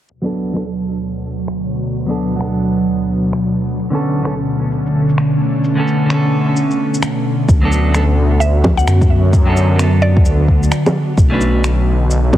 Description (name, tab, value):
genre	future garage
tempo	130 BPM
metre	4/4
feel	swing 62% on 16ths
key	unclear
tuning	A4 = 440 Hz
part	ethereal airy pad	sustained chords	0.6-12.4 s	D2 to F#4	-18 LUFS	equal	ensemble chorus, built-in reverb, sidechain pumping
part	electronic shaker, finger snaps and bongos	drums	0.1-12.4 s	none	-20 LUFS	equal	studio reverb
part	clean electric guitar	accompaniment	0.2-11.6 s	D3 to B4	-20 LUFS	right 1 dB	vintage 12-bit sampler grit, sidechain pumping, tape echo
part	swelling detuned saw bass	bass	7.5-12.4 s	B1 to F#2	-13 LUFS	equal	tube saturation, sidechain pumping
part	electronic kick drum	drums	7.5-12.4 s	none	-13 LUFS	equal	studio reverb
part	mallet-like synth pluck	melody	8.4-10.4 s	D5 to F#5	-24 LUFS	right 1 dB	chorus, analog delay
room	digital ambience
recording	heavily compressed radio sound, multiband compression, cassette tape, low-pass filter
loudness	-13 LUFS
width	side -12 dB against mid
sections	0.1-7.5 A section; 7.5-12.4 B section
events	filter sweep 0.1-7.5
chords	0.1 D6; 3.8 Bm9; 7.5 D6; 11.2 Bm9